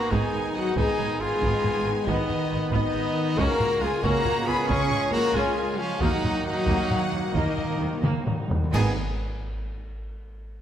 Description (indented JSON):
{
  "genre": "cinematic, epic orchestral film score",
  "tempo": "90 BPM (dotted quarters)",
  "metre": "12/8",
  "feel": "uneven beats",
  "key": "G# dorian",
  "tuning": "A4 = 441 Hz",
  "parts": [
    { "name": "dark symphonic violin section", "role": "melody", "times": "0.0-9.0 s", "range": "D#5 to C#6", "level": "-35 LUFS", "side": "left 4 dB", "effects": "none" },
    { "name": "warm symphonic violin section", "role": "second line", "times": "0.0-9.0 s", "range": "D#5 to C#6", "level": "-36 LUFS", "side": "left 2 dB", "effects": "none" },
    { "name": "rich symphonic viola section", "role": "accompaniment", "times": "0.0-9.0 s", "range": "D#3 to E#4", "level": "-33 LUFS", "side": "equal", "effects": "none" },
    { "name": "bright trombone section", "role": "sustained chords", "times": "0.0-8.9 s", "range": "C#3 to B3", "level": "-34 LUFS", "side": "right 4 dB", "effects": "none" },
    { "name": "dark French horn section", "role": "sustained chords", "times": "0.0-8.9 s", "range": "D#4 to C#5", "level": "-29 LUFS", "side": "left 4 dB", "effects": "none" },
    { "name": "clear trumpet", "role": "stabs", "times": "0.0-8.9 s", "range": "A#3 to G#4", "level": "-31 LUFS", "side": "right 1 dB", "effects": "none" },
    { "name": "warm symphonic cello section", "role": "bass", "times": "0.0-9.0 s", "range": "D#3 to C#4", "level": "-31 LUFS", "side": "right 3 dB", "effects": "none" },
    { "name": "rich studio double bass section", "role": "bass", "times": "0.1-9.0 s", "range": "G#1 to D#2", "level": "-30 LUFS", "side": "right 3 dB", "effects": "none" },
    { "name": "taiko ensemble", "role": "drums", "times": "0.1-8.7 s", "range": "none", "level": "-30 LUFS", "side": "equal", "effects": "none" },
    { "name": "timpani", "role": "percussion", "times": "6.0-8.9 s", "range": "G#2 to D#3", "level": "-34 LUFS", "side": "equal", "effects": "none" },
    { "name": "clash cymbals and concert bass drum", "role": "percussion", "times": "8.7-9.6 s", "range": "none", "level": "-34 LUFS", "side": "equal", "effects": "none" }
  ],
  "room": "moderate scoring stage reverb, RT60 1.9 s",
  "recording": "none",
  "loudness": "-22 LUFS",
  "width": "side -10 dB against mid",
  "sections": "0.0-8.7 A section; 8.7-10.6 B section",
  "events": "timpani fill 6.0-8.7; drum fill 8.0-8.7; band accent 8.7-9.2",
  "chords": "0.0 G#m; 3.4 C#; 6.0 D#m; 8.7 G#m"
}